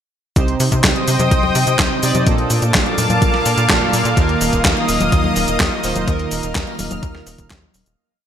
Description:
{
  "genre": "italo disco",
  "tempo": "126 BPM",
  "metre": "4/4",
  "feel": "straight",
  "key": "unclear",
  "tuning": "A4 = 440 Hz",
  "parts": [
    { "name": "lush unison pad", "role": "sustained chords", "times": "0.7-8.0 s", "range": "Bb3 to F6", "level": "-20 LUFS", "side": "left 1 dB", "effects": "chorus, shimmer reverb" },
    { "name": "analog synth brass", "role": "stabs", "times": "0.4-7.5 s", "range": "Bb2 to D5", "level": "-22 LUFS", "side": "right 3 dB", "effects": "chorus, cassette tape, ping-pong delay, shimmer reverb" },
    { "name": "tight sequencer bass", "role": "bass", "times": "0.4-8.0 s", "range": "Eb1 to C3", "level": "-21 LUFS", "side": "equal", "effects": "tube saturation" },
    { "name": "clean 12-bit digital drum machine", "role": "drums", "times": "0.4-8.0 s", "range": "cabasa, congas, handclaps, hi-hat, snare drum", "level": "-19 LUFS", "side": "left 1 dB", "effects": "overdrive, gated reverb" },
    { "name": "electronic kick drum", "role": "drums", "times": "0.4-7.6 s", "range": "none", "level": "-18 LUFS", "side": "equal", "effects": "overdrive" }
  ],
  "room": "moderate plate reverb, RT60 2.1 s",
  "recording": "bright 1980s-style digital production",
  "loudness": "-14 LUFS",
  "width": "side -9 dB against mid",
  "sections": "0.4-8.0 chorus",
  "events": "fade-out 5.4-8.0",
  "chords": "0.4 Cm; 2.3 Bbmaj7; 4.2 Ebsus2",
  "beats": "| 0.36 0.84 1.31 1.79 | 2.27 2.74 3.22 3.69 | 4.17 4.65 5.12 5.60 | 6.08 6.55 7.03 7.50"
}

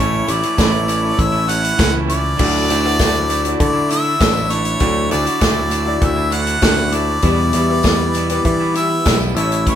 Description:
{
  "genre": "folk rock and heartland rock",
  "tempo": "99 BPM",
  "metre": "4/4",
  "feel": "straight",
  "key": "D major",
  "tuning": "A4 = 440 Hz",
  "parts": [
    { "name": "bright harmonica", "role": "melody", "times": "0.0-9.8 s", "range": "C#5 to F#5", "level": "-20 LUFS", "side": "left 2 dB", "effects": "none" },
    { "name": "picked steel-string acoustic guitar", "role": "accompaniment", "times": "0.0-9.8 s", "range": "E2 to E4", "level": "-24 LUFS", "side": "left 1 dB", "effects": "none" },
    { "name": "warm grand piano", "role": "accompaniment", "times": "0.0-9.8 s", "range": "D4 to C#6", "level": "-28 LUFS", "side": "left 4 dB", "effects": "none" },
    { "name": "twangy electric guitar", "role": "riff", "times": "0.0-9.8 s", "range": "E2 to E4", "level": "-23 LUFS", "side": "right 6 dB", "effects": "none" },
    { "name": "picked electric bass", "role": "bass", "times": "0.0-9.8 s", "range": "A1 to E3", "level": "-20 LUFS", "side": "equal", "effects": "none" },
    { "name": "tambourine", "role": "percussion", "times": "0.1-9.7 s", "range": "none", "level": "-35 LUFS", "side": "left 4 dB", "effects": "none" },
    { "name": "natural country drum kit", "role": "drums", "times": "0.3-9.8 s", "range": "crash cymbal, hi-hat, kick drum, snare drum", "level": "-19 LUFS", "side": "equal", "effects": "none" }
  ],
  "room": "moderate studio reverb, RT60 0.5 s",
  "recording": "band playing live in one room",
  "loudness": "-14 LUFS",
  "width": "side -10 dB against mid",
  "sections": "0.0-9.8 A section",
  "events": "none",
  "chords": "0.0 A; 2.4 Dadd9; 7.2 Em",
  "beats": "0.58 1.18 1.79 | 2.39 3.00 3.60 4.21 | 4.81 5.42 6.02 6.63 | 7.23 7.84 8.45 9.05 | 9.66"
}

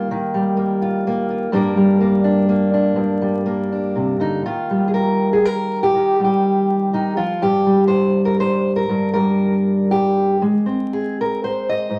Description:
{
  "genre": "folk, solo fingerstyle acoustic guitar",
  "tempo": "122 BPM",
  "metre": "3/4",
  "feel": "straight",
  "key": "Eb major",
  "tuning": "A4 = 440 Hz",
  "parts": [
    { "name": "fingerpicked steel-string acoustic guitar", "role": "solo", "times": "0.0-12.0 s", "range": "G2 to Eb5", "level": "-18 LUFS", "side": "equal", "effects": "none" }
  ],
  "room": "wet studio reverb, RT60 0.8 s",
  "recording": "vinyl crackle",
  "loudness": "-18 LUFS",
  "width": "mono",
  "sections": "0.0-4.5 A section; 4.5-12.0 B section",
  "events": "none",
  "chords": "0.0 Ebadd9; 1.5 Gm; 4.5 Ebadd9; 7.4 N.C.; 10.4 Ab",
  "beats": "| 0.10 0.58 1.05 | 1.53 2.01 2.49 | 2.97 3.46 3.96 | 4.46 4.96 5.46 | 5.96 6.45 6.94 | 7.43 7.92 8.41 | 8.91 9.41 9.91 | 10.42 10.92 11.42 | 11.92"
}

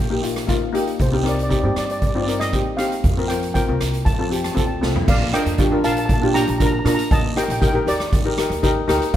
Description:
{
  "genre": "calypso",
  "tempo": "118 BPM",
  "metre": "4/4",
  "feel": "straight",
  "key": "Bb major",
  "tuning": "A4 = 439 Hz",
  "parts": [
    { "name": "steel pan", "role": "melody", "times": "0.0-9.2 s", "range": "Bb4 to Bb5", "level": "-26 LUFS", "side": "equal", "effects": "none" },
    { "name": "upright bass", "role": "bass", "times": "0.0-9.2 s", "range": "Bb1 to Eb3", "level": "-25 LUFS", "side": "equal", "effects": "none" },
    { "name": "steel pan", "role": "accompaniment", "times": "0.1-9.1 s", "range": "Bb3 to Bb4", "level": "-21 LUFS", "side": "left 1 dB", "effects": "none" },
    { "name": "street-band drum kit", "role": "drums", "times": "0.2-9.2 s", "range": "crash cymbal, hi-hat, kick drum, rim click, snare drum, toms", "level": "-21 LUFS", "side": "right 1 dB", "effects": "none" },
    { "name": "guiro", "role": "percussion", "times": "0.2-8.8 s", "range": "none", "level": "-36 LUFS", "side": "right 6 dB", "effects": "none" }
  ],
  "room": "light reverb",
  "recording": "rough home demo mix",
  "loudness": "-17 LUFS",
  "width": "side -11 dB against mid",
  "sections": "0.0-5.1 A section; 5.1-9.2 B section",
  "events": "drum fill 4.8",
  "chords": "0.0 Eb; 1.0 Cm7; 3.0 Fsus4; 4.1 F; 5.1 Bb; 7.1 Ebmaj7",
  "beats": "0.49 | 1.00 1.51 2.02 2.53 | 3.04 3.55 4.06 4.57 | 5.08 5.59 6.10 6.61 | 7.11 7.62 8.13 8.64 | 9.14"
}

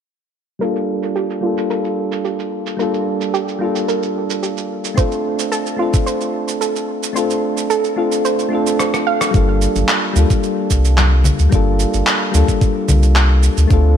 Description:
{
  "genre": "sunset chillout",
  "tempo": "110 BPM",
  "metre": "4/4",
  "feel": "straight",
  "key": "G minor",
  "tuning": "A4 = 435 Hz",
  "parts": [
    { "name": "soft electric-piano-like synth keys", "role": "accompaniment", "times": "0.6-14.0 s", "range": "G3 to A4", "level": "-19 LUFS", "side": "moving between left 4 dB and right 3 dB", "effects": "chorus, auto-pan, low-pass filter, tape echo" },
    { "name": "soft round pluck", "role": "arpeggios", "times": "0.6-9.2 s", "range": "F4 to F5", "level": "-23 LUFS", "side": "right 4 dB", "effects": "chorus, tape echo" },
    { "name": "electronic cabasa, rim click and handclaps", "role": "drums", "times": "0.6-13.8 s", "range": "none", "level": "-22 LUFS", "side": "right 2 dB", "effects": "low-pass filter on perc, low-pass filter on snare, low-pass filter on room" },
    { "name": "electronic kick drum", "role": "drums", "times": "5.0-6.0, 9.3-13.8 s", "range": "none", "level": "-15 LUFS", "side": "equal", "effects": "none" },
    { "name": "warm sub bass", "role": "bass", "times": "9.3-14.0 s", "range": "G1 to D2", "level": "-13 LUFS", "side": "equal", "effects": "tube saturation" },
    { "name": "congas", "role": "percussion", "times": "9.8-13.0 s", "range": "none", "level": "-24 LUFS", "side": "left 4 dB", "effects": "none" }
  ],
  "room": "light reverb",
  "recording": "none",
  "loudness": "-14 LUFS",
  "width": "side -9 dB against mid",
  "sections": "0.6-9.3 A section; 9.3-14.0 B section",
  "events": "filter sweep on synth keys 0.6-9.3; filter sweep on synth pluck 0.6-9.3; kick drops out 7.2-9.3; drum fill 8.8-9.3",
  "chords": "0.6 Gm7; 5.0 Dm7; 9.3 Gm7",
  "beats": "| 0.61 1.16 1.70 2.25 | 2.79 3.34 3.89 4.43 | 4.98 5.52 6.07 6.61 | 7.16 7.70 8.25 8.79 | 9.34 9.89 10.43 10.98 | 11.52 12.07 12.61 13.16 | 13.70"
}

